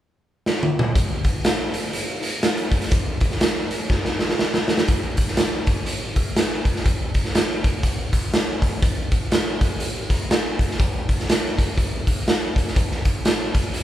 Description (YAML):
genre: soul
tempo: 122 BPM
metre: 4/4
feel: swing 59% on 8ths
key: none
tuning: none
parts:
  - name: raw garage drum kit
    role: drums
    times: 0.5-13.8 s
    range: hi-hat, kick drum, snare drum, toms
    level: -19 LUFS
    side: equal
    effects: none
room: moderate large studio reverb, RT60 1.5 s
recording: band playing live in one room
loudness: -19 LUFS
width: side -12 dB against mid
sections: 1.0-4.9 A section; 4.9-13.8 B section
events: drum fill 0.5-1.0, 3.9-4.9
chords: none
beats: 0.46 | 0.95 1.45 1.94 2.43 | 2.92 3.42 3.91 4.40 | 4.89 5.38 5.88 6.37 | 6.86 7.35 7.85 8.34 | 8.83 9.32 9.81 10.30 | 10.80 11.29 11.78 12.27 | 12.76 13.25 13.74